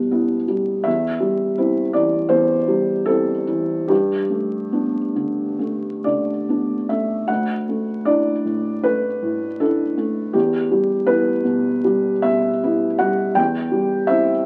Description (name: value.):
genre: neoclassical minimalist piano.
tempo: 66-84 BPM.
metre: 4/4.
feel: rubato.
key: G major.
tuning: A4 = 440 Hz.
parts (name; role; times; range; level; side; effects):
felt-muted upright piano; solo; 0.0-14.5 s; D2 to G5; -20 LUFS; equal; none.
room: moderate studio reverb, RT60 0.8 s.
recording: very old 78 rpm record, vinyl crackle.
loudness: -20 LUFS.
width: mono.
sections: 0.0-14.5 A section.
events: none.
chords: 0.0 Em; 0.9 C/E; 3.9 Gadd9; 7.3 Dadd9; 10.3 Em; 13.4 C/E.